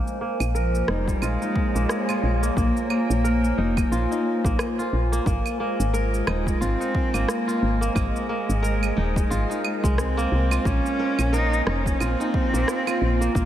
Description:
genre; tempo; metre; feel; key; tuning
organic downtempo; 89 BPM; 4/4; swing 58% on 16ths; Bb minor; A4 = 439 Hz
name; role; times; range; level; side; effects
warbly tape-like pad; sustained chords; 0.0-13.5 s; Ab3 to Ab5; -29 LUFS; equal; chorus, built-in reverb, sidechain pumping
kora; arpeggios; 0.0-13.5 s; Ab3 to Bb4; -29 LUFS; right 1 dB; low-pass filter, tape echo
electronic cabasa, claves and rim click; drums; 0.1-13.5 s; none; -32 LUFS; right 2 dB; overdrive
woody FM bass; bass; 0.4-13.5 s; Eb1 to C2; -24 LUFS; equal; sidechain pumping
dark cello; melody; 0.5-13.5 s; F3 to Eb4; -27 LUFS; equal; analog delay
electronic kick drum; drums; 1.1-13.5 s; none; -26 LUFS; equal; overdrive
room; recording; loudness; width
moderate lush hall reverb, RT60 2.8 s; dreamy mix soaked in reverb; -21 LUFS; side -11 dB against mid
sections
0.0-13.5 A section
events
none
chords
0.0 Bbm7; 5.3 Abadd9; 10.7 Bbm7

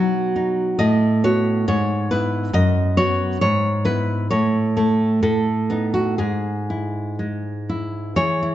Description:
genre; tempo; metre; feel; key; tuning
romantic piece for solo classical guitar; 60-70 BPM; 2/4; rubato; E major; A4 = 442 Hz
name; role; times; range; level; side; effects
nylon-string guitar; solo; 0.0-8.5 s; F#2 to D#5; -18 LUFS; equal; none
room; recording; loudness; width
moderate recital hall reverb, RT60 1.6 s; nothing above 7.7 kHz; -18 LUFS; side -12 dB against mid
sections
0.0-8.2 A section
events
none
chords
0.0 B; 0.8 B7/A; 1.7 E/G#; 2.5 B/F#; 3.4 E/G#; 4.3 A; 5.2 B7/A; 6.2 E/G#

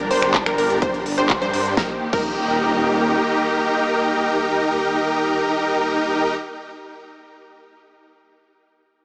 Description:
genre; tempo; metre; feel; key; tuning
EDM, festival progressive house; 126 BPM; 4/4; straight; Eb major; A4 = 440 Hz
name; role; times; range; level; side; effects
muted studio string section; sustained chords; 0.0-6.3 s; Eb3 to Bb4; -27 LUFS; equal; sidechain pumping
unison pluck; arpeggios; 0.0-6.9 s; Bb4 to C5; -26 LUFS; equal; sidechain pumping, digital delay
dense compressed supersaw; riff; 0.0-6.3 s; D4 to C5; -23 LUFS; equal; sidechain pumping, digital delay
detuned saw bass; bass; 0.0-3.2 s; Eb1 to G2; -30 LUFS; equal; sidechain pumping
big-room dance drum kit; drums; 0.1-2.3 s; crash cymbal, finger snaps, handclaps, hi-hat, snare drum; -28 LUFS; equal; small room ambience
electronic kick drum; drums; 0.3-2.3 s; none; -29 LUFS; equal; small room ambience
room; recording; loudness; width
moderate huge ambient reverb, RT60 5.2 s; small speaker sound; -20 LUFS; mono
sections
0.0-1.8 A section; 1.8-5.6 B section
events
drop 0.0-1.8; band accent 1.3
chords
0.0 Gm; 1.8 Eb

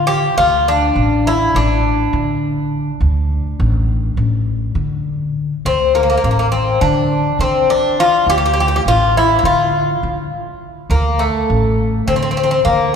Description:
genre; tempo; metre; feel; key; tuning
Turkish makam ensemble; 205 BPM (eighths); 9/8; straight; D makam nihavent; A4 = 440 Hz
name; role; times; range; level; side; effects
Greek bouzouki; melody; 0.0-12.9 s; A3 to G4; -15 LUFS; left 1 dB; none
upright bass; bass; 0.0-12.9 s; A1 to D3; -18 LUFS; equal; none
room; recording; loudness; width
wet church reverb, RT60 2.8 s; recorded in a church or concert hall; -13 LUFS; side -7 dB against mid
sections
0.0-5.6 A section; 5.6-13.0 B section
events
none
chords
none

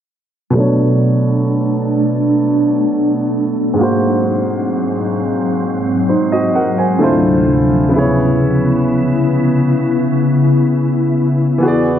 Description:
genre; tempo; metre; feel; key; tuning
R&B; 65 BPM; 4/4; straight; B dorian; A4 = 442 Hz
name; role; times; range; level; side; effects
warm baby grand piano; accompaniment; 0.5-12.0 s; G#2 to G#5; -15 LUFS; right 1 dB; low-pass filter
glassy FM pad; sustained chords; 0.5-12.0 s; D2 to G#4; -15 LUFS; left 1 dB; ensemble chorus, built-in reverb, phaser, low-pass filter
room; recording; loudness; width
wet church reverb, RT60 2.7 s; dreamy mix soaked in reverb; -12 LUFS; side -9 dB against mid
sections
0.5-12.0 A section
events
filter sweep 0.5-12.0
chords
0.5 Bm7; 3.8 G#7; 7.0 Dm7; 7.9 C#m7

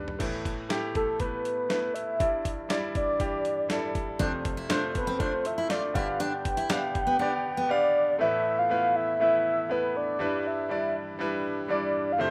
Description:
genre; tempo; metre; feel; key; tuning
piano-driven pop; 120 BPM; 4/4; straight; A minor; A4 = 442 Hz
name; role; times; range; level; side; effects
bright grand piano; accompaniment; 0.0-12.3 s; F2 to F5; -34 LUFS; equal; none
dusty soul sampler-style drum kit; drums; 0.1-7.1 s; crash cymbal, hi-hat, kick drum, snare drum, toms; -35 LUFS; equal; overdrive
chorused pulse-width pad; sustained chords; 0.2-12.3 s; G2 to B4; -47 LUFS; equal; none
soft octave-layered synth lead; melody; 1.0-12.3 s; A4 to G5; -29 LUFS; equal; chorus
picked steel-string acoustic guitar; riff; 4.2-7.7 s; B3 to F4; -36 LUFS; equal; none
room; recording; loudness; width
light reverb, digital ambience; rough home demo mix; -28 LUFS; mono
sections
0.2-8.2 A section; 8.2-12.3 B section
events
drum fill 0.0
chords
0.2 Asus2; 2.2 Em7/G; 4.2 F; 6.0 G; 8.2 Asus2; 10.2 Em7/G

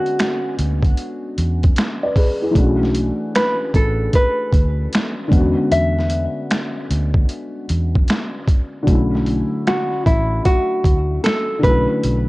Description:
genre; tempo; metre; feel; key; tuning
lo-fi hip hop; 76 BPM; 4/4; swing 65% on 16ths; B dorian; A4 = 440 Hz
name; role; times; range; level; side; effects
nylon-string guitar; melody; 0.0-12.3 s; E4 to E5; -20 LUFS; equal; low-pass filter, analog delay
felt-muted upright piano; accompaniment; 0.0-12.3 s; D3 to D5; -22 LUFS; left 1 dB; cassette tape, low-pass filter
boom bap sampler-style drum kit; drums; 0.1-12.3 s; finger snaps, hi-hat, kick drum, snare drum; -18 LUFS; equal; overdrive, vintage 12-bit sampler grit
vintage muted fingered electric bass; bass; 0.6-12.3 s; A1 to E2; -20 LUFS; equal; transformer saturation
room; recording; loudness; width
light reverb, small room ambience; worn, warbling old tape, cassette tape, warbly pitch drift; -16 LUFS; side -20 dB against mid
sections
0.0-12.3 A section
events
none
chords
0.0 E13; 2.6 Bm11; 5.3 E13; 8.9 Bm11

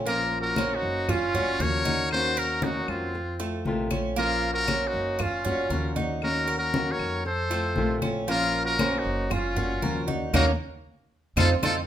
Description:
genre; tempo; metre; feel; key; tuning
latin, Cuban son and guajira; 117 BPM; 4/4; straight; Bb minor; A4 = 440 Hz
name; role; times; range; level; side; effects
flamenco guitar; accompaniment; 0.0-11.8 s; C3 to C5; -31 LUFS; left 2 dB; none
Cuban tres; arpeggios; 0.0-11.8 s; A3 to Bb4; -31 LUFS; right 4 dB; none
upright bass; bass; 0.0-11.8 s; Gb1 to F2; -32 LUFS; equal; none
trumpet with metal mute; melody; 0.1-11.8 s; F4 to Db5; -28 LUFS; equal; none
growling trumpet; second line; 0.1-11.8 s; C4 to Bb4; -35 LUFS; left 4 dB; none
congas; percussion; 0.1-11.7 s; none; -32 LUFS; left 1 dB; none
claves; percussion; 0.6-11.8 s; none; -38 LUFS; left 7 dB; none
room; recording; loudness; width
moderate large studio reverb, RT60 0.9 s; minimal, uncompressed stereo recording; -24 LUFS; side -10 dB against mid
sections
0.0-11.9 A section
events
band accent 10.3-11.9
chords
0.1 Bbmadd9; 1.1 Gbmaj7; 2.1 Ebm7; 3.1 F7; 4.2 Bbmadd9; 5.2 Gbmaj7; 6.2 Ebm7; 7.3 F7; 8.3 Bbmadd9; 9.3 Gbmaj7; 10.3 Eb7(no3)

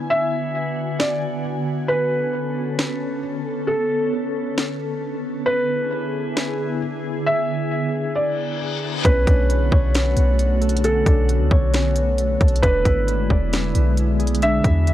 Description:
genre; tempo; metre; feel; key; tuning
hip hop, atmospheric cloud-rap; 134 BPM; 4/4; half-time; B dorian; A4 = 440 Hz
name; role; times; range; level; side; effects
glassy FM pad; sustained chords; 0.0-14.9 s; D3 to G#5; -24 LUFS; equal; ensemble chorus, built-in reverb, sidechain pumping
felt-muted upright piano; melody; 0.1-14.9 s; A4 to E5; -24 LUFS; right 1 dB; low-pass filter, digital delay
trap drum kit; drums; 1.0-14.9 s; hi-hat, kick drum, snare drum; -20 LUFS; equal; none
reverse cymbal; sound effects; 8.3-9.0 s; none; -29 LUFS; left 7 dB; none
clean 808-style bass; bass; 9.0-14.9 s; E1 to E2; -19 LUFS; equal; none
Celtic harp; arpeggios; 9.1-14.9 s; C#4 to D5; -26 LUFS; left 1 dB; low-pass filter, digital delay
room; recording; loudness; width
little or no reverb; worn, warbling old tape, cassette tape, warbly pitch drift; -18 LUFS; side -13 dB against mid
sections
0.0-9.0 A section; 9.0-14.9 B section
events
break 0.0-1.9; reverse cymbal 8.3-9.0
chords
0.0 E7; 1.9 Bm9; 5.5 E7; 9.0 Bm9; 12.6 E7

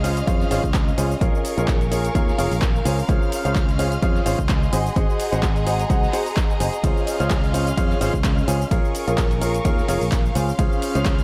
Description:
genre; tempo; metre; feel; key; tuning
piano house; 128 BPM; 4/4; swing 55% on 16ths; Db major; A4 = 438 Hz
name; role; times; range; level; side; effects
rich studio violin section; sustained chords; 0.0-11.2 s; Ab4 to F6; -34 LUFS; equal; sidechain pumping
clear baby grand piano; riff; 0.0-11.1 s; F4 to Ab5; -27 LUFS; equal; sidechain pumping, tape echo
fingered electric bass; bass; 0.0-11.2 s; F1 to F2; -26 LUFS; equal; sidechain pumping
dusty soul sampler-style drum kit; drums; 0.0-11.2 s; hi-hat, snare drum; -44 LUFS; equal; none
punchy analog drum machine; drums; 0.0-11.2 s; cabasa, handclaps, hi-hat, ride cymbal; -34 LUFS; equal; overdrive
clear studio string section; texture; 0.0-11.2 s; Db4 to Bb5; -32 LUFS; equal; sidechain pumping
electronic kick drum; drums; 0.3-11.2 s; none; -23 LUFS; equal; overdrive
room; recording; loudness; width
light reverb; none; -21 LUFS; mono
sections
0.0-11.2 A section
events
none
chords
0.0 Dbmaj7; 1.2 Bbm7; 2.9 Dbmaj7; 4.7 Ab7; 6.8 Dbmaj7; 8.7 Bbm7; 10.4 Dbmaj7

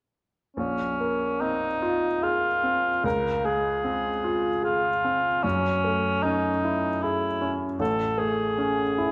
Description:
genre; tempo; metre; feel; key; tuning
classical, impressionist duo for cor anglais and grand piano; 75 BPM; 3/4; rubato; Bb minor; A4 = 444 Hz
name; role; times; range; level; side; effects
mellow cor anglais; melody; 0.6-9.1 s; Db4 to Bb4; -28 LUFS; equal; none
clear baby grand piano; accompaniment; 0.6-9.1 s; A1 to Ab4; -29 LUFS; equal; none
room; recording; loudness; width
wet recital hall reverb, RT60 1.5 s; none; -26 LUFS; mono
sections
0.6-9.1 A section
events
none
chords
0.6 Bbm9; 3.0 Dbmaj7; 5.4 Gbm9; 7.8 Amaj7

